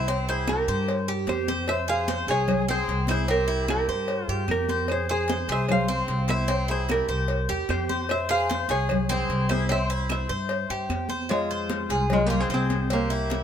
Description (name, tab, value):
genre	latin, Cuban son and guajira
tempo	150 BPM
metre	4/4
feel	straight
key	F harmonic minor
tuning	A4 = 436 Hz
part	archtop guitar, miked and amplified	melody	0.0-13.4 s	Ab3 to F5	-28 LUFS	right 2 dB	none
part	breathy bright jazz flute	second line	0.0-13.4 s	F4 to C5	-33 LUFS	left 6 dB	none
part	Cuban tres	arpeggios	0.0-13.4 s	C4 to C5	-29 LUFS	right 1 dB	none
part	upright bass	bass	0.0-13.4 s	C2 to G2	-28 LUFS	equal	none
part	congas	percussion	0.1-13.4 s	none	-32 LUFS	left 1 dB	none
part	cowbell	percussion	0.1-13.4 s	none	-34 LUFS	left 1 dB	none
part	claves	percussion	0.5-11.1 s	none	-37 LUFS	right 5 dB	none
room	light reverb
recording	minimal, uncompressed stereo recording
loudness	-23 LUFS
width	side -8 dB against mid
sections	0.0-11.3 A section; 11.3-13.4 B section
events	none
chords	0.1 C7; 1.7 Fm; 3.3 C7; 4.9 Fm; 6.5 C7; 8.1 Fm; 9.7 C; 11.3 Fm; 12.9 C7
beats	| 0.08 0.48 0.88 1.28 | 1.68 2.08 2.48 2.88 | 3.29 3.69 4.09 4.49 | 4.89 5.29 5.69 6.09 | 6.49 6.89 7.29 7.70 | 8.10 8.50 8.90 9.30 | 9.70 10.10 10.50 10.90 | 11.30 11.70 12.11 12.51 | 12.91 13.31